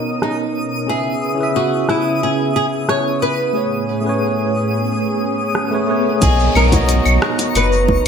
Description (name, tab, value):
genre	sunset chillout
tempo	90 BPM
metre	4/4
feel	straight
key	B major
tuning	A4 = 438 Hz
part	tine electric piano	accompaniment	0.0-8.1 s	A3 to E5	-21 LUFS	right 1 dB	fast stereo tremolo, auto-pan, digital delay
part	lush unison pad	sustained chords	0.0-8.1 s	A2 to A#5	-23 LUFS	equal	chorus
part	twinkling granular texture	texture	0.0-8.1 s	C#6 to D#6	-27 LUFS	left 1 dB	built-in reverb, lush chorus
part	flamenco guitar	melody	0.2-8.1 s	D#4 to C#5	-20 LUFS	equal	wide subtle chorus, digital delay
part	deep house drum kit	drums	0.2-8.1 s	claves, hi-hat, rim click, shaker	-21 LUFS	right 1 dB	low-pass filter on snare, low-pass filter on hats, low-pass filter on perc, low-pass filter on room, gated reverb
part	swell and downlifter	sound effects	5.2-8.1 s	none	-24 LUFS	left 2 dB	none
part	warm sub bass	bass	6.2-8.1 s	F#1 to B1	-16 LUFS	left 1 dB	none
part	electronic kick drum	drums	6.2-8.0 s	none	-19 LUFS	left 1 dB	none
part	bongos	percussion	6.2-8.0 s	none	-23 LUFS	right 2 dB	none
room	moderate plate reverb, RT60 2.0 s, digital ambience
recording	bright 1980s-style digital production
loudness	-15 LUFS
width	side -7 dB against mid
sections	0.0-6.2 A section; 6.2-8.1 B section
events	swell 5.2-6.2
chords	0.0 Bmaj9; 0.9 C#m7; 3.6 Amaj9; 6.2 Bmaj9